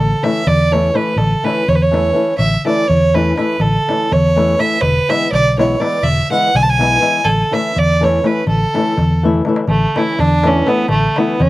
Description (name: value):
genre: balkan folk, Balkan wedding band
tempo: 247 BPM (eighths)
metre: 5/8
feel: straight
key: A major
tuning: A4 = 440 Hz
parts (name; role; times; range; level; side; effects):
- clear fiddle; melody; 0.0-11.5 s; A3 to A5; -15 LUFS; right 2 dB; slapback echo
- vintage muted fingered electric bass; bass; 0.0-11.5 s; E1 to E2; -16 LUFS; equal; none
- flamenco guitar; accompaniment; 0.2-11.4 s; E3 to E4; -18 LUFS; left 3 dB; slapback echo
- darbuka; percussion; 0.2-11.5 s; none; -21 LUFS; left 1 dB; none
room: little or no reverb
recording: recorded outdoors, with no room sound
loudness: -12 LUFS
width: side -17 dB against mid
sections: 0.0-9.7 A section; 9.7-11.5 A section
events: drum fill 9.1-9.7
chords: 0.0 A; 4.8 E; 7.2 A